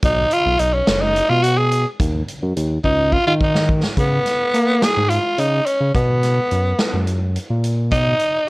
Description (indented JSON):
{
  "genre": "progressive instrumental, band music in an uneven meter",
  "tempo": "213 BPM (eighths)",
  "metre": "7/8",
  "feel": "straight",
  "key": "unclear",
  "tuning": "A4 = 440 Hz",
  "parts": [
    { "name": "raspy tenor saxophone", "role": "melody", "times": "0.0-8.5 s", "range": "B3 to G#4", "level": "-17 LUFS", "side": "equal", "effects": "none" },
    { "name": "smooth synth bass", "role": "bass", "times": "0.0-8.1 s", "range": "F#1 to A#3", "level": "-19 LUFS", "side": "equal", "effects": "none" },
    { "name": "swinging big-band drum kit", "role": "drums", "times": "0.0-8.3 s", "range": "hi-hat, kick drum, snare drum", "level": "-23 LUFS", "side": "equal", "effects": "none" }
  ],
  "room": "light reverb",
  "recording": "worn, warbling old tape, cassette tape, warbly pitch drift",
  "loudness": "-15 LUFS",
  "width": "side -24 dB against mid",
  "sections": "0.0-4.0 A section; 4.0-8.5 B section",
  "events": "tenor saxophone solo 0.0-4.0; drum fill 2.8-4.0",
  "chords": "0.0 B; 2.0 D#7(no3); 4.0 C#5; 5.9 B5; 7.9 N.C."
}